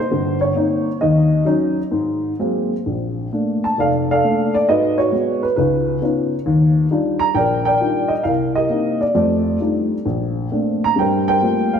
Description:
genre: solo jazz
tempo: 132 BPM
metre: 4/4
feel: swing 68% on 8ths, rubato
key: Bb major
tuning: A4 = 440 Hz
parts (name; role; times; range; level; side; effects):
- dark upright piano; solo; 0.0-11.8 s; F1 to Bb5; -16 LUFS; equal; none
room: wet echo chamber reverb, RT60 2.2 s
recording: heard from further back in the room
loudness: -16 LUFS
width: side -7 dB against mid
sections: 0.0-2.9 A section; 2.9-11.8 B section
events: upright piano solo 0.0-2.9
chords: 0.0 Cm7; 1.0 Ebm7; 1.9 Ab9; 2.9 Bbmaj7; 4.7 Abm7; 5.6 Db9; 6.5 Ebmaj9; 8.2 Cm7; 9.1 F13; 10.1 Bbmaj9; 11.0 Gm11

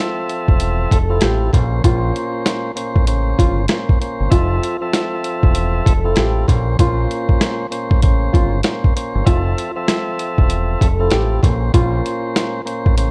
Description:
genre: hip hop, boom-bap hip-hop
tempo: 97 BPM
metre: 4/4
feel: swing 63% on 16ths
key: unclear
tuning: A4 = 440 Hz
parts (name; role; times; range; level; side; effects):
- nylon-string guitar; melody; 0.0-12.9 s; F4 to A4; -26 LUFS; equal; high-pass filter, low-pass filter, tape echo
- tonewheel organ; accompaniment; 0.0-13.1 s; Bb2 to E5; -25 LUFS; equal; overdrive, cassette tape, high-pass filter, low-pass filter
- dusty soul sampler-style drum kit; drums; 0.3-13.1 s; hi-hat, kick drum, snare drum; -18 LUFS; equal; none
- deep dub fingered electric bass; bass; 0.5-13.1 s; E1 to Bb1; -21 LUFS; equal; none
room: little or no reverb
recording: worn, warbling old tape, cassette tape, warbly pitch drift, faint mains hum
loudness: -17 LUFS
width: mono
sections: 0.0-13.1 A section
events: none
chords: 0.0 Fmaj7; 1.5 Bbmadd9; 4.3 Fmaj7; 6.5 Bbmadd9; 9.3 Fmaj7; 11.4 Bbmadd9

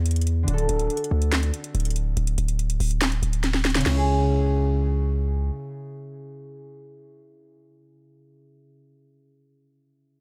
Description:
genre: hip hop, trap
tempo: 142 BPM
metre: 4/4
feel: half-time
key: C# phrygian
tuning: A4 = 440 Hz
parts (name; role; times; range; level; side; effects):
- concert harp; accompaniment; 0.0-8.8 s; C#3 to A4; -30 LUFS; equal; analog delay
- distorted 808-style bass; bass; 0.0-5.5 s; D1 to E2; -25 LUFS; equal; distortion
- trap drum kit; drums; 0.1-4.0 s; crash cymbal, handclaps, hi-hat, snare drum; -30 LUFS; equal; none
room: little or no reverb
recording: echo-heavy mix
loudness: -24 LUFS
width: mono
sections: 0.0-3.9 A section; 3.9-7.2 B section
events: drum fill 3.4-3.9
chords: 0.5 D; 3.9 C#m

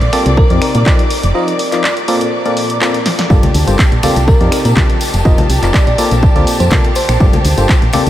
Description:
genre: piano house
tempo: 123 BPM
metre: 4/4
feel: swing 53% on 16ths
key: unclear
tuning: A4 = 441 Hz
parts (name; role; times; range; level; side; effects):
- rich studio violin section; sustained chords; 0.0-8.1 s; G4 to D6; -22 LUFS; equal; sidechain pumping
- solid FM bass; bass; 0.0-8.1 s; F1 to Bb2; -14 LUFS; equal; sidechain pumping
- punchy analog drum machine; drums; 0.0-8.1 s; finger snaps, handclaps, hi-hat, snare drum; -19 LUFS; equal; none
- barking FM electric piano; riff; 0.1-8.1 s; G2 to Eb5; -16 LUFS; left 1 dB; chorus, sidechain pumping, diffuse ambient delay
- bell-like FM electric piano; melody; 0.4-7.3 s; Bb4 to D5; -23 LUFS; right 1 dB; none
- electronic kick drum; drums; 0.4-7.8 s; none; -12 LUFS; equal; none
- tambourine and congas; percussion; 3.3-8.1 s; none; -21 LUFS; left 2 dB; none
room: moderate huge ambient reverb, RT60 7.9 s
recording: dreamy mix soaked in reverb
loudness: -9 LUFS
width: side -13 dB against mid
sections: 0.0-8.1 A section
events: break 1.3-3.3; drum fill 3.1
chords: 0.4 Cm9; 1.1 F7sus4; 2.1 Bbmaj9; 3.3 Gm9; 4.3 F7sus4; 6.0 Bbmaj9; 7.2 Gm9

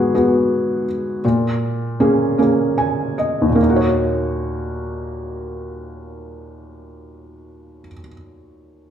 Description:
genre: folk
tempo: 48-56 BPM (dotted quarters)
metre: 6/8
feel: straight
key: Eb minor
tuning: A4 = 440 Hz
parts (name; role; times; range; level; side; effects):
- felt-muted upright piano; solo; 0.0-8.9 s; Eb2 to Ab5; -17 LUFS; equal; none
room: wet large studio reverb, RT60 1.4 s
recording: band playing live in one room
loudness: -16 LUFS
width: side -9 dB against mid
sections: 0.0-3.6 A section; 3.6-8.6 B section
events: slowing down 0.0-3.6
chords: 0.0 Abm7; 1.2 Bbm7; 3.6 Ebm7

